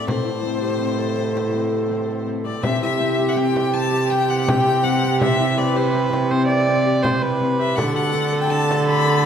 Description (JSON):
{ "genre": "contemporary instrumental, chamber music in an uneven meter", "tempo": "164 BPM", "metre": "7/4", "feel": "straight", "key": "unclear", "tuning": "A4 = 440 Hz", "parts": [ { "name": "clear violin", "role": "melody", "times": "0.0-9.3 s", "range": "C5 to B5", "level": "-24 LUFS", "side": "left 5 dB", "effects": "none" }, { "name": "concert harp", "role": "arpeggios", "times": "0.0-9.3 s", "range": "C4 to A4", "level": "-25 LUFS", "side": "left 6 dB", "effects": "none" }, { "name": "dark cello", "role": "bass", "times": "0.0-9.3 s", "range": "A2 to D3", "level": "-23 LUFS", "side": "right 4 dB", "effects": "none" }, { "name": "mellow woodwind section", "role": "sustained chords", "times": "0.1-9.3 s", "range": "B2 to A4", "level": "-29 LUFS", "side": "right 3 dB", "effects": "none" }, { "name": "frame drum", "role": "percussion", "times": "0.1-9.0 s", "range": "none", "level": "-27 LUFS", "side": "left 1 dB", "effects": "none" }, { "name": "rich viola", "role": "second line", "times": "2.7-9.3 s", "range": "G4 to D5", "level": "-22 LUFS", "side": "right 2 dB", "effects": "none" } ], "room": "wet concert hall reverb, RT60 2.1 s", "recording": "none", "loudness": "-17 LUFS", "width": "side -8 dB against mid", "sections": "0.0-2.6 A section; 2.6-9.3 B section", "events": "none", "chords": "0.1 Amadd9; 2.6 C; 7.8 D" }